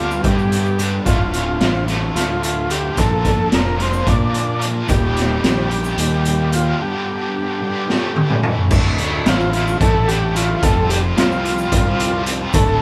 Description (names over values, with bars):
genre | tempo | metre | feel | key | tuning
psychedelic rock | 220 BPM (eighths) | 7/8 | straight | D phrygian, D minor from 8.7 s | A4 = 439 Hz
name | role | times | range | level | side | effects
overdriven combo organ | melody | 0.0-12.8 s | F4 to D5 | -24 LUFS | equal | none
crunchy overdriven guitar | riff | 0.0-12.8 s | D2 to Bb4 | -25 LUFS | equal | harmonic tremolo
fuzz fingered electric bass | bass | 0.0-12.8 s | D1 to Bb2 | -23 LUFS | equal | overdrive
egg shaker | percussion | 0.1-12.7 s | none | -42 LUFS | equal | none
raw garage drum kit | drums | 0.2-12.7 s | crash cymbal, hi-hat, kick drum, snare drum, toms | -21 LUFS | equal | none
room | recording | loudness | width
moderate stone room reverb, RT60 1.0 s | band playing live in one room | -18 LUFS | mono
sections
0.0-8.7 A section; 8.7-12.8 B section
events
break 6.8-8.7; drum fill 7.9-8.7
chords
0.0 G; 1.1 Dm; 3.0 Bb; 4.9 Eb; 6.8 G; 7.9 A7; 8.7 Dmadd9; 10.6 Fsus2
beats
0.24 0.52 0.79 | 1.06 1.34 1.61 1.88 2.16 2.43 2.70 | 2.98 3.25 3.52 3.79 4.07 4.34 4.61 | 4.89 5.16 5.43 5.71 5.98 6.25 6.53 | 6.80 7.07 7.35 7.62 7.89 8.17 8.44 | 8.71 8.99 9.26 9.53 9.81 10.08 10.35 | 10.63 10.90 11.17 11.45 11.72 11.99 12.27 | 12.54 12.81